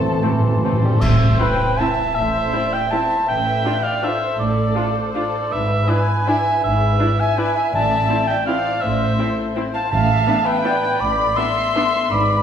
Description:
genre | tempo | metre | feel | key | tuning
classical, orchestral ballroom waltz | 162 BPM | 3/4 | uneven beats, rubato | A minor | A4 = 441 Hz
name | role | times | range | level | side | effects
muted symphonic violin section | melody | 0.0-12.4 s | G#4 to A5 | -29 LUFS | left 2 dB | none
mellow cor anglais | second line | 0.0-12.4 s | B4 to A5 | -20 LUFS | right 1 dB | none
muted symphonic violin section | second line | 0.0-12.4 s | A4 to C6 | -24 LUFS | left 3 dB | none
silver concert flute | second line | 0.0-0.6 s | A5 | -32 LUFS | left 5 dB | none
mellow bassoon | accompaniment | 0.0-0.9 s | E3 to A3 | -27 LUFS | right 1 dB | none
warm French horn section | sustained chords | 0.0-0.8 s | E3 to C4 | -27 LUFS | right 2 dB | none
muted symphonic cello section | bass | 0.0-12.4 s | G#2 to A2 | -27 LUFS | right 2 dB | none
muted symphonic double bass section | bass | 0.0-12.4 s | G#1 to A1 | -24 LUFS | right 1 dB | none
timpani | percussion | 0.0-1.0, 7.7-10.4 s | A2 | -22 LUFS | equal | none
muted symphonic viola section | accompaniment | 0.2-11.8 s | A3 to F4 | -26 LUFS | equal | none
clash cymbals and concert bass drum | percussion | 1.0-1.8 s | none | -27 LUFS | left 1 dB | none
room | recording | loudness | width
wet recital hall reverb, RT60 1.6 s | recorded in a church or concert hall | -16 LUFS | side -8 dB against mid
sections
0.0-1.0 A section; 1.0-12.4 A section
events
timpani fill 0.0-1.0; band accent 1.0-1.4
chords
0.0 Am; 3.3 Dm/A; 5.5 E7/G#; 7.7 Am; 9.9 Bm7b5/A

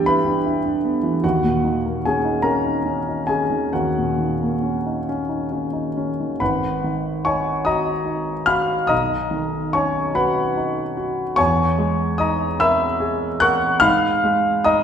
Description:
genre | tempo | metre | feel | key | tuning
classical, impressionist solo piano | 43-54 BPM (dotted quarters) | 6/8 | rubato | G# minor | A4 = 443 Hz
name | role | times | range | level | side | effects
warm concert grand piano | solo | 0.0-14.8 s | G#1 to F#6 | -18 LUFS | equal | none
room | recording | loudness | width
wet scoring stage reverb, RT60 1.5 s | recorded in a church or concert hall | -18 LUFS | side -8 dB against mid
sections
0.0-6.4 A section; 6.4-14.8 B section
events
none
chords
0.0 G69; 1.2 D#m7; 6.4 G#m9; 8.9 Badd9; 11.4 Emaj7#11; 13.9 G#madd9

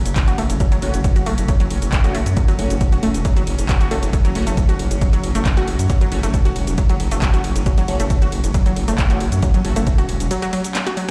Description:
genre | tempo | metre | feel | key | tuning
driving peak-time techno | 136 BPM | 4/4 | straight | F# minor | A4 = 445 Hz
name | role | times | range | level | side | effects
rave stab | stabs | 0.0-11.1 s | A3 to F#4 | -32 LUFS | equal | chorus, built-in reverb, sidechain pumping, tape echo
gritty driven synth bass | bass | 0.0-10.3 s | E1 to F#2 | -23 LUFS | equal | sidechain pumping
overtone-sweeping drone | drone | 0.0-11.1 s | F#3 to C#4 | -33 LUFS | equal | chorus, built-in reverb, phaser, sidechain pumping
punchy analog drum machine | drums | 0.1-11.1 s | handclaps, hi-hat, ride cymbal, shaker, snare drum | -31 LUFS | equal | sidechain pumping on hats, sidechain pumping on perc, sidechain pumping on cymbals
electronic kick drum | drums | 0.2-10.0 s | none | -20 LUFS | equal | none
unison pluck | riff | 0.3-11.1 s | F#3 to F#4 | -28 LUFS | equal | tube saturation, sidechain pumping, dub echo
room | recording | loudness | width
light reverb | played on a big sound system in a bare room, large studio reverb | -18 LUFS | mono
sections
0.0-11.1 A section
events
break 10.3-11.1; drum fill 10.8-11.1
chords
0.0 F#m

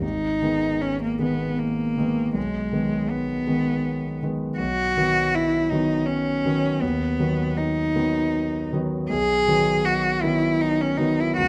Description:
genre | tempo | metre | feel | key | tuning
classical, romantic duo for cello and grand piano | 80 BPM | 3/4 | rubato | G# minor | A4 = 441 Hz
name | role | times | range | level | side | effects
clear cello | melody | 0.0-11.5 s | G#3 to G#4 | -25 LUFS | equal | none
warm concert grand piano | accompaniment | 0.0-11.5 s | G#1 to B3 | -27 LUFS | equal | none
room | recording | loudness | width
moderate scoring stage reverb, RT60 1.6 s | close, detailed microphones | -23 LUFS | mono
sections
0.0-11.5 A section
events
none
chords
0.0 G#m; 2.4 G#m/B; 4.6 B; 6.8 B/D#; 9.1 B

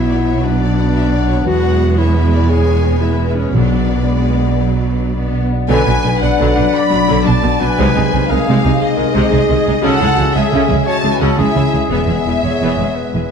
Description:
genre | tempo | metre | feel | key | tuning
cinematic, heroic adventure film score | 115 BPM (dotted quarters) | 12/8 | straight | B dorian | A4 = 439 Hz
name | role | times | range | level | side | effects
rich studio violin section | melody | 0.0-13.3 s | B4 to B5 | -24 LUFS | left 3 dB | none
mellow clarinet | second line | 0.0-13.3 s | B3 to D5 | -21 LUFS | left 3 dB | none
warm studio violin section | second line | 0.0-13.3 s | B4 to B5 | -25 LUFS | left 2 dB | none
bright symphonic viola section | accompaniment | 0.0-13.2 s | B#2 to G#4 | -21 LUFS | right 1 dB | none
concert harp | arpeggios | 0.0-13.3 s | E2 to G#5 | -23 LUFS | left 7 dB | none
dark symphonic cello section | bass | 0.0-13.2 s | E2 to C#3 | -19 LUFS | right 3 dB | none
rich symphonic double bass section | bass | 0.0-13.2 s | E1 to C#2 | -18 LUFS | right 3 dB | none
timpani | percussion | 3.5-4.0 s | B2 | -19 LUFS | left 2 dB | none
warm French horn section | sustained chords | 5.7-13.3 s | F#3 to D#4 | -21 LUFS | left 5 dB | none
warm trumpet section | stabs | 5.7-13.3 s | G#4 to D5 | -21 LUFS | left 1 dB | none
room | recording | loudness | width
moderate scoring stage reverb, RT60 2.0 s | dark, warm production | -12 LUFS | side -6 dB against mid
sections
0.0-5.7 A section; 5.7-13.3 B section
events
none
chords
0.0 Bm; 1.5 E; 3.6 Bm; 7.8 G#/B#; 9.8 C#m; 11.9 E

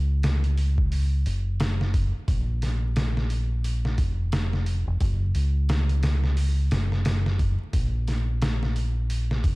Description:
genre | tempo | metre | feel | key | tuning
trip hop | 88 BPM | 4/4 | swing 60% on 16ths | Bb minor | A4 = 440 Hz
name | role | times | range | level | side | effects
deep dub fingered electric bass | bass | 0.0-9.6 s | F1 to Db2 | -23 LUFS | equal | none
trip hop sampler-style drum kit | drums | 0.2-9.6 s | hi-hat, kick drum, snare drum | -27 LUFS | equal | none
room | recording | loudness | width
little or no reverb | dark, warm production, vinyl crackle | -22 LUFS | side -23 dB against mid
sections
0.0-9.6 A section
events
none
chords
none

